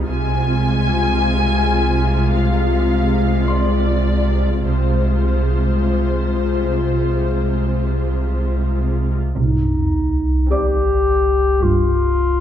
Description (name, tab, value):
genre	cinematic, suspense film score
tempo	52 BPM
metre	4/4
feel	straight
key	unclear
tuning	A4 = 439 Hz
part	muted symphonic viola section	accompaniment	0.0-11.4 s	G3 to F4	-22 LUFS	left 4 dB	none
part	muted symphonic cello section	bass	0.0-12.4 s	G2 to C3	-25 LUFS	right 4 dB	none
part	muted symphonic double bass section	bass	0.0-12.4 s	G1 to C2	-23 LUFS	right 2 dB	none
part	pure sine sub bass	drone	0.0-12.4 s	C2	-20 LUFS	equal	none
part	clear grand piano	texture	0.0-12.4 s	D5 to Eb6	-31 LUFS	equal	none
part	muted symphonic violin section	melody	0.1-8.8 s	C5 to Ab5	-24 LUFS	left 2 dB	none
part	dark clarinet	second line	9.4-12.4 s	Eb4 to G4	-18 LUFS	left 3 dB	none
part	sub drop	sound effects	9.4-12.4 s	none	-24 LUFS	equal	none
room	moderate scoring stage reverb, RT60 1.9 s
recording	dark, warm production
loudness	-15 LUFS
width	side -10 dB against mid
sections	0.0-9.4 A section; 9.4-12.4 A section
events	impact 9.4-12.4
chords	0.1 Fm/C; 9.4 Cm